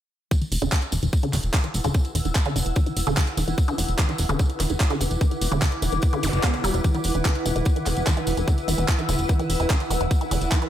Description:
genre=psychedelic trance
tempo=147 BPM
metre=4/4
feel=straight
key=unclear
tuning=A4 = 439 Hz
part: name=wide unison pluck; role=riff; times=0.3-10.7 s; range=D3 to B3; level=-28 LUFS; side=equal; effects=auto-pan, sidechain pumping, analog delay
part: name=electronic kick drum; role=drums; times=0.3-10.6 s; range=none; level=-21 LUFS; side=equal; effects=overdrive, small room reverb
part: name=garage drum kit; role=drums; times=0.3-10.7 s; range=handclaps, hi-hat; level=-30 LUFS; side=right 1 dB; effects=overdrive, small room reverb
part: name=tambourine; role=percussion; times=0.3-10.7 s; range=none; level=-34 LUFS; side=equal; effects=none
part: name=granular cloud pad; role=texture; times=1.4-10.7 s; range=E4 to E6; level=-29 LUFS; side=equal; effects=built-in reverb, sidechain pumping
part: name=plucky analog bass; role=bass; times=0.5-10.5 s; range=E1 to F#1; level=-25 LUFS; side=equal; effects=none
part: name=zap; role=sound effects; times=6.2-6.3 s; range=none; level=-33 LUFS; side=left 1 dB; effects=none
room=light reverb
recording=none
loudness=-20 LUFS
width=side -11 dB against mid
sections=0.3-10.7 A section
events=none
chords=0.3 E5

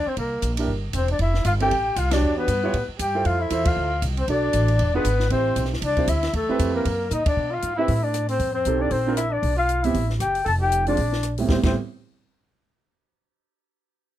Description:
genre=jazz, small-group swing and bop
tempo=233 BPM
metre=4/4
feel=swing 58% on 8ths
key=A minor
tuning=A4 = 441 Hz
part: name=breathy clarinet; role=melody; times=0.0-11.7 s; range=A4 to A5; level=-25 LUFS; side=left 4 dB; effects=none
part: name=breathy trumpet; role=second line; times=0.0-11.7 s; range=A3 to A4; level=-29 LUFS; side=right 4 dB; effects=none
part: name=upright bass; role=bass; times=0.0-11.7 s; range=E1 to B2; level=-24 LUFS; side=equal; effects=none
part: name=compact cocktail drum kit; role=drums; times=0.2-11.7 s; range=crash cymbal, hi-hat, kick drum, ride cymbal, rim click, snare drum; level=-29 LUFS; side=equal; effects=none
part: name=warm concert grand piano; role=accompaniment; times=0.6-11.7 s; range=A2 to D5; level=-26 LUFS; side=right 5 dB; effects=none
room=little or no reverb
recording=close, detailed microphones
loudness=-20 LUFS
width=side -12 dB against mid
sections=0.0-7.4 A section; 7.4-11.5 B section; 11.5-12.5 C section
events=band accent 2.1, 3.6, 7.2; drum fill 7.1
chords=0.2 C7; 1.2 Fmaj9; 2.2 Em7; 2.7 A5; 3.3 Dm9; 4.3 Bm7; 4.8 E7b9; 5.3 Am9; 6.9 F#; 7.4 G13b9; 7.9 Amadd11; 8.4 F9; 8.9 Bbadd9; 9.4 Dm13/B; 9.9 F#m7; 10.5 Fsus2; 11.0 Bbadd9; 11.5 Am9

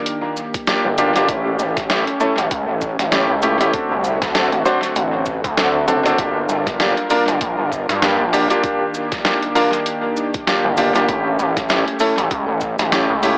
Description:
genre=glitch hop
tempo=98 BPM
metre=4/4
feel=swing 57% on 16ths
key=unclear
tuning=A4 = 444 Hz
part: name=warm analog pad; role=sustained chords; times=0.0-13.4 s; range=D3 to Bb4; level=-27 LUFS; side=equal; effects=chorus, sidechain pumping
part: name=boom bap sampler-style drum kit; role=drums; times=0.1-13.4 s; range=hi-hat, snare drum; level=-25 LUFS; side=equal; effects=analog delay
part: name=cabasa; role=percussion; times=0.1-13.4 s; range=none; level=-38 LUFS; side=equal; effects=none
part: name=electronic kick drum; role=drums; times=0.5-12.8 s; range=none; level=-32 LUFS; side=equal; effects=none
part: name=clear concert grand piano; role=stabs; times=0.7-13.3 s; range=A3 to C5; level=-21 LUFS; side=equal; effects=sidechain pumping, analog delay
part: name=gritty driven synth bass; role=bass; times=0.9-13.4 s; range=F#1 to G2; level=-23 LUFS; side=equal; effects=tube saturation
room=wet spring reverb, RT60 1.6 s, digital ambience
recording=echo-heavy mix, AM radio sound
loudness=-18 LUFS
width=mono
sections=0.0-13.4 A section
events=none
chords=0.0 Ebmaj7; 1.3 A7; 3.7 D7; 6.2 Gm7; 8.6 Ebmaj7; 11.1 A7

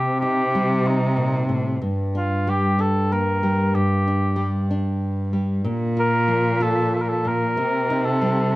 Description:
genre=acoustic folk-pop ballad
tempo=94 BPM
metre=3/4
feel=straight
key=G minor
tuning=A4 = 440 Hz
part: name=mellow cor anglais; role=melody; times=0.0-8.6 s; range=Eb4 to Bb4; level=-23 LUFS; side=equal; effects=none
part: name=nylon-string guitar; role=accompaniment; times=0.0-8.6 s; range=G2 to F4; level=-24 LUFS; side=equal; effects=none
part: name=dark cello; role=bass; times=0.0-8.6 s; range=G2 to C3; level=-23 LUFS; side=equal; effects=none
room=light reverb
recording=none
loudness=-19 LUFS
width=side -18 dB against mid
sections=0.0-8.6 A section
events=none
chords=0.0 Cm7; 1.8 Gm; 5.6 Bb; 7.6 Cm7

